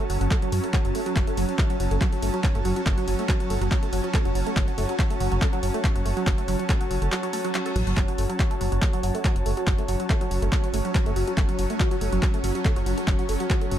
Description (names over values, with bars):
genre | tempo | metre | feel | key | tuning
driving peak-time techno | 141 BPM | 4/4 | straight | F# minor | A4 = 440 Hz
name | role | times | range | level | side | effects
tight sequenced synth | riff | 0.0-13.8 s | F#3 to A3 | -30 LUFS | right 2 dB | chorus, phaser, tube saturation, sidechain pumping, dub echo
swarming drone | drone | 0.0-13.8 s | F#3 to C#4 | -33 LUFS | equal | built-in reverb, sidechain pumping
punchy analog drum machine | drums | 0.0-13.8 s | handclaps, hi-hat | -32 LUFS | equal | overdrive, sidechain pumping on hats, sidechain pumping on cymbals
airy breathy pad | texture | 0.0-13.8 s | F#4 to A5 | -31 LUFS | right 1 dB | chorus, sidechain pumping
dark detuned saw bass | bass | 0.1-13.8 s | F#1 to F#2 | -26 LUFS | equal | sidechain pumping
electronic kick drum | drums | 0.3-13.6 s | none | -24 LUFS | equal | overdrive
reverse cymbal | sound effects | 7.3-8.0 s | none | -41 LUFS | left 4 dB | none
room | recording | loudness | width
digital ambience | dark, warm production | -22 LUFS | side -11 dB against mid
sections
0.0-13.8 A section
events
kick drops out 7.1-8.0; reverse cymbal 7.3-8.0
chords
0.0 F#m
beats
0.31 0.74 | 1.16 1.59 2.01 2.44 | 2.86 3.29 3.71 4.14 | 4.57 4.99 5.42 5.84 | 6.27 6.69 7.12 7.54 | 7.97 8.40 8.82 9.25 | 9.67 10.10 10.52 10.95 | 11.38 11.80 12.23 12.65 | 13.08 13.50